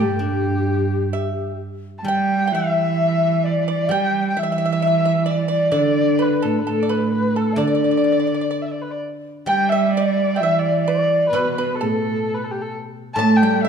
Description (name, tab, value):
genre	chinese traditional, Chinese chamber ensemble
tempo	65 BPM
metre	2/4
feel	straight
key	D zhi mode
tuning	A4 = 440 Hz
part	dark erhu	melody	0.0-13.7 s	G4 to A5	-23 LUFS	left 1 dB	none
part	breathy hollow xiao	second line	0.0-13.7 s	G4 to A5	-25 LUFS	left 7 dB	none
part	dark cello	second line	0.0-13.7 s	G2 to A3	-22 LUFS	right 5 dB	none
part	pipa	second line	0.0-13.7 s	G4 to A5	-27 LUFS	right 5 dB	none
part	guzheng	accompaniment	0.0-13.7 s	A2 to D4	-25 LUFS	left 2 dB	none
room	wet recital hall reverb, RT60 1.6 s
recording	dark, warm production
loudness	-17 LUFS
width	side -7 dB against mid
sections	0.0-9.5 A section; 9.5-13.7 B section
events	none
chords	none